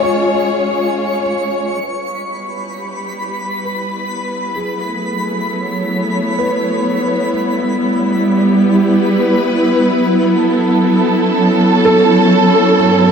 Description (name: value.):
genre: ambient.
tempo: 66 BPM.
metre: 3/4.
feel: straight.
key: unclear.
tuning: A4 = 441 Hz.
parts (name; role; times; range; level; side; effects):
dark studio string section; sustained chords; 0.0-13.1 s; G2 to C#5; -13 LUFS; equal; shimmer reverb.
felt-muted upright piano; arpeggios; 0.0-7.6, 11.8-13.0 s; G#4 to D#5; -21 LUFS; equal; ping-pong delay, shimmer reverb.
twinkling granular texture; texture; 0.0-13.1 s; B5 to D6; -25 LUFS; equal; built-in reverb, shimmer reverb.
room: wet plate reverb, RT60 3.5 s.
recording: dreamy mix soaked in reverb.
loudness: -12 LUFS.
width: side -6 dB against mid.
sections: 0.0-1.8 A section; 1.8-12.7 B section.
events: fade-in on string section 1.8-12.7; fade-in on felt piano 1.8-12.7; fade-out on synth texture 1.8-12.7.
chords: 0.0 C#; 1.8 Em; 4.6 Amaj9; 7.3 Em; 10.0 Aadd9.